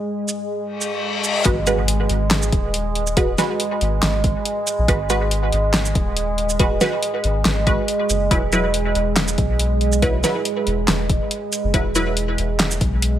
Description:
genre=deep dubstep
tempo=140 BPM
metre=4/4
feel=swing 53% on 16ths, half-time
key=G# minor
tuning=A4 = 436 Hz
part: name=deep dark ambient pad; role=sustained chords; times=0.0-13.2 s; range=G#3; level=-23 LUFS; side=right 2 dB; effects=chorus, built-in reverb
part: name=deep house drum kit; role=drums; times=0.3-13.1 s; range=handclaps, hi-hat, shaker, snare drum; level=-21 LUFS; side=equal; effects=none
part: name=reverse cymbal and impact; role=sound effects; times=0.8-3.2 s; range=none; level=-25 LUFS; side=left 4 dB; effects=none
part: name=filtered dub chord stab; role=stabs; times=1.5-12.1 s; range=F#3 to B4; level=-24 LUFS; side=right 1 dB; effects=phaser, dub echo
part: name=soft dub sub bass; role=bass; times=1.5-13.2 s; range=D#1 to B1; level=-22 LUFS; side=equal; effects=none
part: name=electronic kick drum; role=drums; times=1.5-12.9 s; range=none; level=-21 LUFS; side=equal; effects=none
room=light reverb, digital ambience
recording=none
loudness=-17 LUFS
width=side -11 dB against mid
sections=0.0-1.5 A section; 1.5-13.2 B section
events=filter sweep on synth stab 0.0-1.5; filter sweep 0.0-1.5; reverse cymbal 0.8-1.5; drop 1.5-13.2; impact 1.5-3.2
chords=0.0 N.C.; 1.5 G#m7; 8.3 Esus2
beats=0.17 0.60 1.03 | 1.46 1.88 2.31 2.74 | 3.17 3.60 4.03 4.46 | 4.88 5.31 5.74 6.17 | 6.60 7.03 7.46 7.88 | 8.31 8.74 9.17 9.60 | 10.03 10.46 10.88 11.31 | 11.74 12.17 12.60 13.03

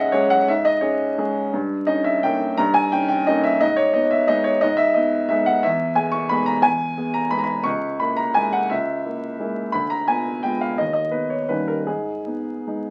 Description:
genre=classical, piano waltz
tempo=148-189 BPM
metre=3/4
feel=rubato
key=G# minor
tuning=A4 = 440 Hz
part: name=warm upright piano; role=solo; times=0.0-12.9 s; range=C#2 to C#6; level=-21 LUFS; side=equal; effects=none
room=moderate small room reverb, RT60 0.5 s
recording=very old 78 rpm record, vinyl crackle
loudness=-21 LUFS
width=mono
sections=0.0-12.9 A section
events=none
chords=0.0 C#5/G#; 1.5 D#7/G; 3.6 G#m; 5.6 E; 7.7 A#m7b5/C#; 9.7 Ddim7; 10.8 Badd9/D#; 11.5 D#7; 11.9 G#m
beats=0.13 | 0.48 0.82 1.18 | 1.53 1.88 2.24 | 2.59 2.93 3.27 | 3.62 3.95 4.29 | 4.63 4.96 5.30 | 5.64 5.96 6.30 | 6.64 6.98 7.32 | 7.66 8.01 8.36 | 8.71 9.05 9.40 | 9.74 10.08 10.43 | 10.78 11.12 11.49 | 11.87 12.26 12.66

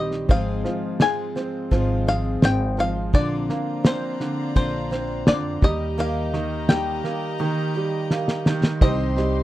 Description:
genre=indie folk with a building arrangement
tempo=84 BPM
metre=4/4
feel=straight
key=unclear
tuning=A4 = 440 Hz
part: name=bluegrass banjo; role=melody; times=0.0-9.4 s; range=C5 to Ab5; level=-26 LUFS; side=left 3 dB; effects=none
part: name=fingerpicked steel-string acoustic guitar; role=accompaniment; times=0.0-3.1 s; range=G2 to Ab4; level=-34 LUFS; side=left 2 dB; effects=none
part: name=picked twelve-string acoustic guitar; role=accompaniment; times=0.0-9.4 s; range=Ab2 to G4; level=-32 LUFS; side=left 6 dB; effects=none
part: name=warm upright piano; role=arpeggios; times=0.0-9.4 s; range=D3 to C4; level=-26 LUFS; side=right 4 dB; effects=none
part: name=upright bass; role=bass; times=0.0-9.4 s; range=Ab1 to F2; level=-26 LUFS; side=equal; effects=none
part: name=cloth-damped thuddy drum kit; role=drums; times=0.1-9.3 s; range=kick drum, snare drum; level=-19 LUFS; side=equal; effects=none
part: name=warm chamber string section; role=sustained chords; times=3.1-9.4 s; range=Eb4 to C6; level=-34 LUFS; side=left 2 dB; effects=none
part: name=clear grand piano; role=accompaniment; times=8.8-9.4 s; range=C2 to Eb5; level=-28 LUFS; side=left 1 dB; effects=none
room=light reverb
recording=rough home demo mix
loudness=-20 LUFS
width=side -15 dB against mid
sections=0.0-8.8 A section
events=drum fill 8.1-8.8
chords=0.3 Ab6; 3.1 Bbadd9; 5.6 Eb; 8.8 Cm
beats=| 0.29 1.00 1.71 2.43 | 3.14 3.85 4.56 5.27 | 5.98 6.69 7.40 8.11 | 8.81

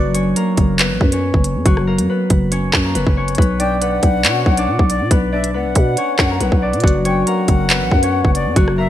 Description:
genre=hip hop, drill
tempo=139 BPM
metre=4/4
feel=half-time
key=B harmonic minor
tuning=A4 = 440 Hz
part: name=concert harp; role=melody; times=0.0-8.9 s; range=F#3 to D5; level=-18 LUFS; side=left 1 dB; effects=low-pass filter, digital delay
part: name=growling 808-style bass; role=bass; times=0.0-8.9 s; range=F#1 to B2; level=-19 LUFS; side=equal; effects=none
part: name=drill drum kit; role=drums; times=0.1-8.8 s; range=handclaps, hi-hat, kick drum, rim click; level=-16 LUFS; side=equal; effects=none
part: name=jazz flute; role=second line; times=3.6-8.9 s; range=D5 to G5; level=-22 LUFS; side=left 4 dB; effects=digital delay
room=light reverb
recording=bright 1980s-style digital production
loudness=-13 LUFS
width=side -12 dB against mid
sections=0.0-8.9 A section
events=none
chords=0.0 F#sus4; 3.4 Bmadd9; 6.8 F#sus4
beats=0.36 0.79 1.22 | 1.66 2.09 2.52 2.95 | 3.38 3.81 4.25 4.68 | 5.11 5.54 5.97 6.40 | 6.84 7.27 7.70 8.13 | 8.56

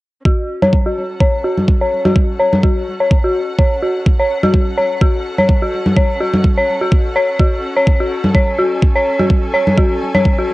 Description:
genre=minimal techno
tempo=126 BPM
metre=4/4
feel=swing 56% on 16ths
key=F# minor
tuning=A4 = 438 Hz
part: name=dark detuned synth bell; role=riff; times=0.3-10.4 s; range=F#4 to C#5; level=-16 LUFS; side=left 1 dB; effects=chorus, sidechain pumping, low-pass filter, tape echo
part: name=electronic kick drum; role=drums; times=0.3-10.4 s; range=none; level=-13 LUFS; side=equal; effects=overdrive, cassette tape
part: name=rich studio string section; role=texture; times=0.3-10.5 s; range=C#4 to G#5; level=-28 LUFS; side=left 1 dB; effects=sidechain pumping
part: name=congas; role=percussion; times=0.6-10.2 s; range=none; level=-18 LUFS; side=equal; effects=cassette tape, analog delay
room=little or no reverb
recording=home recording on cassette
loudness=-12 LUFS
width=side -18 dB against mid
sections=0.3-10.5 A section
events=fade-in on string section 0.3-10.5; filter sweep on synth bell 0.3-10.5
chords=0.3 F#m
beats=| 0.25 0.73 1.20 1.68 | 2.16 2.63 3.11 3.58 | 4.06 4.54 5.01 5.49 | 5.97 6.44 6.92 7.39 | 7.87 8.35 8.82 9.30 | 9.78 10.25

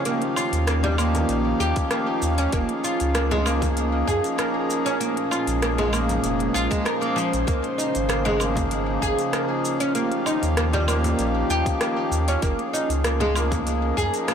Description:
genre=organic downtempo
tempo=97 BPM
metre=4/4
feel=straight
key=unclear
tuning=A4 = 439 Hz
part: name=hand-pumped harmonium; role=accompaniment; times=0.0-14.3 s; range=F3 to Ab4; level=-28 LUFS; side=left 4 dB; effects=sidechain pumping, digital delay
part: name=airy breathy pad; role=sustained chords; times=0.0-14.3 s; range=Bb2 to C5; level=-27 LUFS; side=right 2 dB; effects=chorus, sidechain pumping
part: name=oud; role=arpeggios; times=0.0-14.3 s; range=F3 to Bb4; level=-25 LUFS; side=right 2 dB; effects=digital delay
part: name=organic electronic drum kit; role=drums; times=0.1-14.3 s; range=hi-hat, rim click, shaker, woodblock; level=-30 LUFS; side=equal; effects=soft clipping on snare
part: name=warm sub bass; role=bass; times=0.5-14.1 s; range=F1 to Gb2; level=-25 LUFS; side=equal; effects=sidechain pumping
part: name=frame drum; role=percussion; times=0.8-13.6 s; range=none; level=-34 LUFS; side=left 5 dB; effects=none
part: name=electronic kick drum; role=drums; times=1.8-14.1 s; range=none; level=-26 LUFS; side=equal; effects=none
room=light reverb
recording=blown-out, overdriven recording, overdrive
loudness=-20 LUFS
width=side -8 dB against mid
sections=0.0-14.3 A section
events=none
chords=0.1 Eb9; 2.5 Gbmaj7 (rootless); 5.0 Bbm9; 7.5 Dbmaj7; 10.0 Eb9; 12.4 Gbmaj7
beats=| 0.05 0.67 1.29 1.91 | 2.53 3.15 3.77 4.38 | 5.00 5.62 6.24 6.86 | 7.48 8.10 8.71 9.33 | 9.95 10.57 11.19 11.81 | 12.43 13.04 13.66 14.28

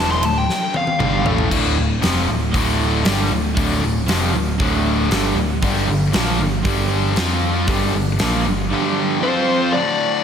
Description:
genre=hard rock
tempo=117 BPM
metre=4/4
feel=straight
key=D minor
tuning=A4 = 440 Hz
part: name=dark smooth lead guitar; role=melody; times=0.0-1.3, 9.2-10.2 s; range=C5 to C6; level=-21 LUFS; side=left 2 dB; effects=overdrive, slapback echo, tape echo
part: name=cranked stack guitar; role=riff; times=0.0-9.7 s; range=D2 to F4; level=-24 LUFS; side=equal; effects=overdrive, slapback echo
part: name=crunchy overdriven guitar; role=riff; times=0.0-9.7 s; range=D2 to F4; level=-25 LUFS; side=right 9 dB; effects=slapback echo
part: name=tight distorted guitar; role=riff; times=0.0-10.2 s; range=D2 to F4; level=-23 LUFS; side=left 8 dB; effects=distortion, slapback echo
part: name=overdriven picked electric bass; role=bass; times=0.0-8.7 s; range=D1 to F2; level=-22 LUFS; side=equal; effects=none
part: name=huge arena drum kit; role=drums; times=0.1-8.3 s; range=crash cymbal, hi-hat, kick drum, ride cymbal, snare drum, toms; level=-22 LUFS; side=equal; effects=none
room=moderate lush hall reverb, RT60 2.1 s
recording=big arena sound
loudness=-16 LUFS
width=side -8 dB against mid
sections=0.0-1.5 A section; 1.5-9.7 B section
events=lead electric guitar solo 0.0-1.5; drum fill 0.5-1.5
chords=0.0 Dm; 5.6 G5; 7.2 F5; 7.7 G5; 9.2 F5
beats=0.48 0.99 | 1.51 2.02 2.54 3.05 | 3.57 4.08 4.60 5.11 | 5.63 6.14 6.66 7.17 | 7.68 8.20 8.71 9.22 | 9.74

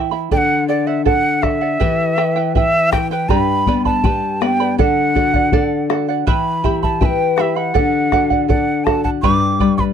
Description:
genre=andean folk, Andean ensemble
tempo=81 BPM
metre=2/4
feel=straight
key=unclear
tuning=A4 = 439 Hz
part: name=charango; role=accompaniment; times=0.0-9.9 s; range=E4 to B5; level=-20 LUFS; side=right 19 dB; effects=none
part: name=nylon-string guitar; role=accompaniment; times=0.0-9.9 s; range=G2 to D5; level=-19 LUFS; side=left 6 dB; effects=none
part: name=quena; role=melody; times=0.3-9.8 s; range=D5 to D6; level=-18 LUFS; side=right 1 dB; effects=none
part: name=bombo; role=percussion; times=0.3-9.9 s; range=none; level=-20 LUFS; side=left 1 dB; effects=none
room=light reverb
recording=dry, close 1970s-style studio recording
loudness=-14 LUFS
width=side -8 dB against mid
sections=0.0-3.3 A section; 3.3-9.9 B section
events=none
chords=0.3 D; 1.8 Em; 3.3 G; 4.8 D; 6.3 Em; 7.8 D; 9.2 G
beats=| 0.31 1.06 | 1.81 2.55 | 3.30 4.04 | 4.79 5.53 | 6.27 7.01 | 7.75 8.49 | 9.23

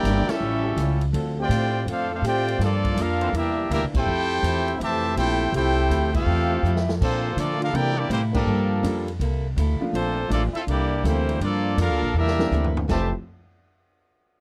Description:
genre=jazz, big band swing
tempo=163 BPM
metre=4/4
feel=swing 65% on 8ths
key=F major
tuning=A4 = 441 Hz
part: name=bright trumpet section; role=melody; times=0.0-13.1 s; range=Bb3 to A5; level=-29 LUFS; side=equal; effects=none
part: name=bright trombone section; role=second line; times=0.0-13.1 s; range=F2 to A4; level=-30 LUFS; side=equal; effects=none
part: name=picked acoustic archtop guitar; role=accompaniment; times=0.0-13.1 s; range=A2 to A4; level=-37 LUFS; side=equal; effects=none
part: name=upright bass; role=bass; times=0.0-13.1 s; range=F1 to D3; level=-26 LUFS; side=equal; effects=none
part: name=swinging big-band drum kit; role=drums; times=0.1-13.0 s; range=crash cymbal, hi-hat, kick drum, ride cymbal, snare drum, toms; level=-34 LUFS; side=equal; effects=none
part: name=clear trombone section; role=sustained chords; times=0.4-6.6 s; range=E3 to C5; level=-36 LUFS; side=equal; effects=none
part: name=clear grand piano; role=accompaniment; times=7.7-13.1 s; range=E3 to Bb4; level=-31 LUFS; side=equal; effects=none
room=light reverb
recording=dry, close 1970s-style studio recording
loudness=-23 LUFS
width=mono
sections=0.0-7.0 A section; 7.0-12.9 B section; 12.9-14.3 C section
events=band accent 0.2, 3.9, 6.1, 8.3; drum fill 6.6-7.0, 12.1-12.9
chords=0.4 A7b13; 1.1 Dm7; 2.6 Gm9; 3.3 C9; 4.1 Fmaj9; 7.0 Bbmaj7; 7.7 C13; 8.5 Gm9; 9.2 C13; 9.9 Bbmaj7; 10.7 C13; 11.4 Gm9; 12.1 C13; 12.9 Fmaj9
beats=0.04 0.41 0.78 | 1.14 1.51 1.87 2.24 | 2.60 2.97 3.34 3.70 | 4.07 4.43 4.80 5.17 | 5.54 5.90 6.27 6.64 | 7.00 7.37 7.74 8.11 | 8.47 8.84 9.21 9.57 | 9.94 10.31 10.68 11.04 | 11.41 11.78 12.15 12.51 | 12.88

